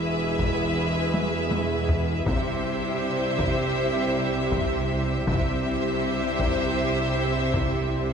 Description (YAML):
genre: cinematic, epic orchestral film score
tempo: 80 BPM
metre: 4/4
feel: straight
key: unclear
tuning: A4 = 440 Hz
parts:
  - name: clear symphonic violin section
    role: melody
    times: 0.0-8.1 s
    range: E5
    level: -32 LUFS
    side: equal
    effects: none
  - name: rich symphonic violin section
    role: second line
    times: 0.0-8.1 s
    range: B4 to C5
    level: -32 LUFS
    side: left 2 dB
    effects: none
  - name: rich symphonic viola section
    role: accompaniment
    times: 0.0-8.1 s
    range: G4 to G#4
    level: -34 LUFS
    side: right 3 dB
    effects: none
  - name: bright trombone section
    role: sustained chords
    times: 0.0-8.1 s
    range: G2 to G#3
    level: -34 LUFS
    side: right 4 dB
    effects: none
  - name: mellow French horn section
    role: sustained chords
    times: 0.0-8.1 s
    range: B3 to E4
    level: -34 LUFS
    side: left 1 dB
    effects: none
  - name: warm symphonic string section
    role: sustained chords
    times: 0.0-8.1 s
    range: E4 to E5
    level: -32 LUFS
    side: left 2 dB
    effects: none
  - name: rich symphonic cello section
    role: bass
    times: 0.0-8.1 s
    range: E2 to C3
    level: -30 LUFS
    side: right 1 dB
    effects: none
  - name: rich symphonic double bass section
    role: bass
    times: 0.0-8.1 s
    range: E1 to C2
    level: -31 LUFS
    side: right 2 dB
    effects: none
  - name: taiko ensemble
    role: drums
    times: 0.4-8.1 s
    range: none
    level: -28 LUFS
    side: left 1 dB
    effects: none
room: moderate scoring stage reverb, RT60 1.6 s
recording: none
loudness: -22 LUFS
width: side -7 dB against mid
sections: 0.0-8.1 A section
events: drum fill 1.1-2.3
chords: 0.0 E; 2.3 C